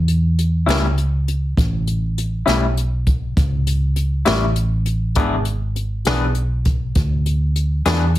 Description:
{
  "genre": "slow blues",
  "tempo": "67 BPM (dotted quarters)",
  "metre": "12/8",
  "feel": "straight",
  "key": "unclear",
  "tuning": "A4 = 440 Hz",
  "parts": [
    { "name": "hollow-body short-scale fingered electric bass", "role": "bass", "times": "0.0-8.2 s", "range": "G#1 to E2", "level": "-18 LUFS", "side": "equal", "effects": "none" },
    { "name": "jazz brush drum kit", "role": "drums", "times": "0.1-8.2 s", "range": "hi-hat, kick drum, snare drum", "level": "-22 LUFS", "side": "equal", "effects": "none" },
    { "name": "electric guitar through a small old amp", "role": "accompaniment", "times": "0.7-8.0 s", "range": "A2 to G#4", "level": "-20 LUFS", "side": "left 3 dB", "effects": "tremolo" }
  ],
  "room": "light reverb",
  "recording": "heavily compressed radio sound",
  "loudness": "-17 LUFS",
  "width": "side -15 dB against mid",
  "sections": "0.0-8.2 A section",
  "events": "none",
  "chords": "0.0 A; 5.2 E7"
}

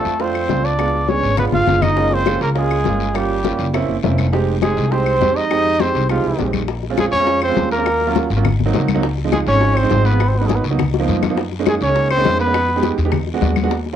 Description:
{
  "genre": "Afro-Cuban jazz",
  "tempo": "204 BPM",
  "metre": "4/4",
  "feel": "straight",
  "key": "F minor, Bb minor from 6.7 s",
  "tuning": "A4 = 438 Hz",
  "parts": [
    { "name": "warm trumpet", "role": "melody", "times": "0.0-12.9 s", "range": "F4 to F5", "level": "-19 LUFS", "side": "left 1 dB", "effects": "none" },
    { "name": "brilliant trombone", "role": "second line", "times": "0.0-12.9 s", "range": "F3 to F4", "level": "-22 LUFS", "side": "right 5 dB", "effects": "none" },
    { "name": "clear concert grand piano", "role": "accompaniment", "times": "0.0-14.0 s", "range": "F3 to Ab4", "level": "-22 LUFS", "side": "right 7 dB", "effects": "none" },
    { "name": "upright bass", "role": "bass", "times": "0.0-14.0 s", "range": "F1 to Gb2", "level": "-20 LUFS", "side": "left 1 dB", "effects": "none" },
    { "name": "bongos", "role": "percussion", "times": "0.1-14.0 s", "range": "none", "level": "-25 LUFS", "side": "left 10 dB", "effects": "none" },
    { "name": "congas", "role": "percussion", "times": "0.1-14.0 s", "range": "none", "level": "-24 LUFS", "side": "left 9 dB", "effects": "none" },
    { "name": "guiro", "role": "percussion", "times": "0.1-14.0 s", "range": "none", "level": "-35 LUFS", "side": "left 12 dB", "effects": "none" },
    { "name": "claves", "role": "percussion", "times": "0.3-13.7 s", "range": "none", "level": "-32 LUFS", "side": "left 12 dB", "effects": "none" }
  ],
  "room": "wet small room reverb, RT60 0.5 s",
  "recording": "home recording on cassette",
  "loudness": "-15 LUFS",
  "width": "side -10 dB against mid",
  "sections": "0.0-6.7 A section; 6.7-14.0 B section",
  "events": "drum fill 1.1-2.0, 10.9-11.4",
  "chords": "0.0 Bbmaj9 (rootless); 0.8 Db7b9; 2.0 Gbmaj9; 3.2 Gm7b5; 3.7 Gb7#11; 4.3 Fm9; 6.7 Bbm9; 7.9 Ebm9; 8.4 Ab7; 9.0 Dbmaj9; 10.2 Abm9; 10.8 Db13; 11.4 Gb69; 12.5 Fm7b5; 13.1 E9"
}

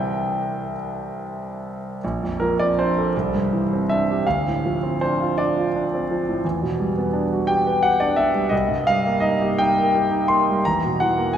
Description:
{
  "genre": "classical, impressionist solo piano",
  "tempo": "45-58 BPM (dotted quarters)",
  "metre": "6/8",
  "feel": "rubato",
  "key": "unclear",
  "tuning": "A4 = 441 Hz",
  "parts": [
    { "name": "clear concert grand piano", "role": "solo", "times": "0.0-11.4 s", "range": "Bb1 to C6", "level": "-19 LUFS", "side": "equal", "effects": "none" }
  ],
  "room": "wet church reverb, RT60 3.3 s",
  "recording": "recorded in a church or concert hall",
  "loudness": "-19 LUFS",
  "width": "side -9 dB against mid",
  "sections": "0.0-2.0 A section; 2.0-11.4 B section",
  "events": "none",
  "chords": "0.0 C9; 2.0 Bbmaj9; 3.1 Cadd9; 4.2 Dm7; 6.4 Em9; 8.5 Cm7; 10.6 E5"
}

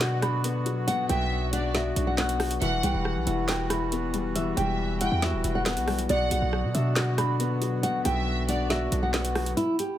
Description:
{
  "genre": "hip hop, drill",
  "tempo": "138 BPM",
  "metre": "4/4",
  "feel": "half-time",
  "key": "unclear",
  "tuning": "A4 = 440 Hz",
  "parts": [
    { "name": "nylon-string guitar", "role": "melody", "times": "0.0-10.0 s", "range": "E4 to B5", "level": "-30 LUFS", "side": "right 1 dB", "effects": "digital delay" },
    { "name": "dark concert grand piano", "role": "accompaniment", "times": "0.0-9.6 s", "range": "B2 to F#4", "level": "-30 LUFS", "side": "left 4 dB", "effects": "none" },
    { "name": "accordion", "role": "sustained chords", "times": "0.0-9.5 s", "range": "D3 to F#4", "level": "-37 LUFS", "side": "right 1 dB", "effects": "none" },
    { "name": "hard-hitting 808-style bass", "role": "bass", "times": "0.0-9.5 s", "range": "D1 to B2", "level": "-29 LUFS", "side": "right 1 dB", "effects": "none" },
    { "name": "drill drum kit", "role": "drums", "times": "0.0-9.9 s", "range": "handclaps, hi-hat, rim click, snare drum", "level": "-31 LUFS", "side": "right 1 dB", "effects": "none" },
    { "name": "warm studio violin section", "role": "second line", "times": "1.1-8.7 s", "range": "D5 to G5", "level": "-35 LUFS", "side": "equal", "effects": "digital delay" }
  ],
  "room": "light reverb, small room ambience",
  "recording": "none",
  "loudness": "-24 LUFS",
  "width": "side -12 dB against mid",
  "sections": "0.0-9.6 A section",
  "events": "kick muted 9.6-10.0",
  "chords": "0.0 Bm; 2.6 Emadd9; 6.1 Bm"
}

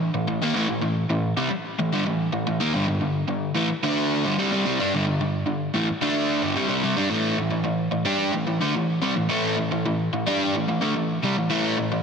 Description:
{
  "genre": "rock",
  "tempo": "110 BPM",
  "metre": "4/4",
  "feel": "straight",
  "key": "A minor",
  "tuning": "A4 = 441 Hz",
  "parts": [
    { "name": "crunchy overdriven guitar", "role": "solo", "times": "0.0-12.0 s", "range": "G2 to G4", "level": "-21 LUFS", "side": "equal", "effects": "spring reverb, tape echo" }
  ],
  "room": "moderate plate reverb, RT60 2.7 s",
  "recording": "heavily compressed radio sound, multiband compression",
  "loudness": "-21 LUFS",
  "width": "side -6 dB against mid",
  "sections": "0.0-7.1 A section; 7.1-12.0 B section",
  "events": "none",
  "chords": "0.0 A5; 2.7 G5; 7.1 A5"
}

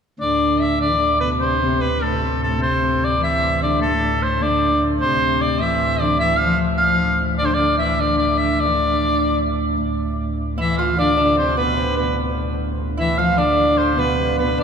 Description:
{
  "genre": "medieval dance",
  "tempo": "100 BPM (dotted quarters)",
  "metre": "6/8",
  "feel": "straight",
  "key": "D dorian",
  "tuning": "A4 = 444 Hz",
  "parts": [
    { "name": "clear shawm", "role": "melody", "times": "0.2-14.6 s", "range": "A4 to F5", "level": "-19 LUFS", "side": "equal", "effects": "none" },
    { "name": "rich viola da gamba", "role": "second line", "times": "0.2-14.6 s", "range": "G2 to F3", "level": "-22 LUFS", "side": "left 2 dB", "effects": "none" },
    { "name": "chamber organ, principal", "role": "drone", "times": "0.2-14.6 s", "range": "D2 to A2", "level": "-24 LUFS", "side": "right 1 dB", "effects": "none" },
    { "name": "lute", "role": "second line", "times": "10.6-14.6 s", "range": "B3 to F4", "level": "-24 LUFS", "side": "right 4 dB", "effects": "none" }
  ],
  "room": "wet cathedral reverb, RT60 6.0 s",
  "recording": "heard from further back in the room",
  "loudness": "-16 LUFS",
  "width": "side -6 dB against mid",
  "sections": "0.2-9.8 A section; 9.8-14.6 B section",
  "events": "none",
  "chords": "none"
}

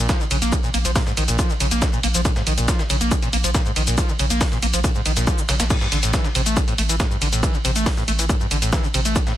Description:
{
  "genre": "driving peak-time techno",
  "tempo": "139 BPM",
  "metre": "4/4",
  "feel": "straight",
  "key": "unclear",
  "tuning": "A4 = 440 Hz",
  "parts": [
    { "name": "screaming distorted acid line", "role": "riff", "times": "0.0-9.3 s", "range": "G2 to Bb3", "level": "-24 LUFS", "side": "equal", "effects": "distortion, wide subtle chorus, sidechain pumping, digital delay" },
    { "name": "saturated sub bass", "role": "bass", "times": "0.0-9.2 s", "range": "A1 to Bb1", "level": "-22 LUFS", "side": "equal", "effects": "overdrive, sidechain pumping, low-pass filter" },
    { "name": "dusty soul sampler-style drum kit", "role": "drums", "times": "0.1-9.4 s", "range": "hi-hat, shaker, snare drum", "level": "-30 LUFS", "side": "right 1 dB", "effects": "high-pass filter on perc, high-pass filter on snare, high-pass filter on hats" },
    { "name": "electronic kick drum", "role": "drums", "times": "0.1-9.2 s", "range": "none", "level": "-21 LUFS", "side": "equal", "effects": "none" },
    { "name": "techno drum kit", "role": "drums", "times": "0.1-9.4 s", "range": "crash cymbal, hi-hat, ride cymbal, shaker", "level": "-24 LUFS", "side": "equal", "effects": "sidechain pumping on hats, sidechain pumping on perc, sidechain pumping on cymbals" }
  ],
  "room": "digital ambience",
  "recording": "none",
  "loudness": "-17 LUFS",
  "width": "side -12 dB against mid",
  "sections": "0.0-9.4 A section",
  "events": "none",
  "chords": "0.0 Bb5; 5.7 A5"
}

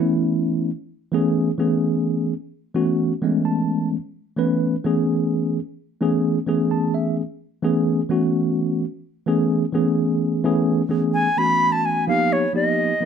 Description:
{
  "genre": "jazz",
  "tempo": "258 BPM (eighths)",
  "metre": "7/8",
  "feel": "straight",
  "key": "A major",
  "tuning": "A4 = 440 Hz",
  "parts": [
    { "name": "tine electric piano", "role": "accompaniment", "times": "0.0-13.1 s", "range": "E3 to A5", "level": "-19 LUFS", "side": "equal", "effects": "fast stereo tremolo" },
    { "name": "bright reedy silver concert flute", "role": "melody", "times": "11.1-13.1 s", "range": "C#5 to B5", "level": "-19 LUFS", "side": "equal", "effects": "none" }
  ],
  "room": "light reverb",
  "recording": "dark, warm production",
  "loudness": "-19 LUFS",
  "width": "side -7 dB against mid",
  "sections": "0.0-10.4 A section; 10.4-13.1 B section",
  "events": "tine electric piano fill 3.2-3.9, 6.5-7.2",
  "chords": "0.0 Amaj9; 12.1 G7alt"
}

